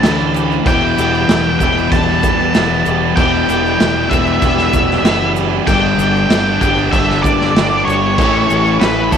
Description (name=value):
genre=classic rock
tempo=96 BPM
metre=4/4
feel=straight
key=E minor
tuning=A4 = 440 Hz
part: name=octave-fuzz lead guitar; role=melody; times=0.0-9.2 s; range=A4 to A5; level=-17 LUFS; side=left 1 dB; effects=distortion
part: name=distorted electric guitar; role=riff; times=0.0-9.2 s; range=G2 to E4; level=-19 LUFS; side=right 15 dB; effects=overdrive
part: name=overdriven semi-hollow guitar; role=riff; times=0.0-9.2 s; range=E2 to A3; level=-18 LUFS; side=left 11 dB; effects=none
part: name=fuzz fingered electric bass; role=bass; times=0.0-9.2 s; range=E1 to G2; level=-20 LUFS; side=right 1 dB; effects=overdrive
part: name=raw garage drum kit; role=drums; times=0.0-9.2 s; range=crash cymbal, kick drum, snare drum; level=-17 LUFS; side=right 1 dB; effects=none
part: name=egg shaker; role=percussion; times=0.1-9.2 s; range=none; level=-37 LUFS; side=left 17 dB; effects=none
room=moderate spring reverb, RT60 2.6 s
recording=1960s-style stereo with parts hard left and right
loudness=-11 LUFS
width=side -8 dB against mid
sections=0.0-9.2 A section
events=none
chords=0.0 A; 0.7 Em; 5.7 G; 8.2 A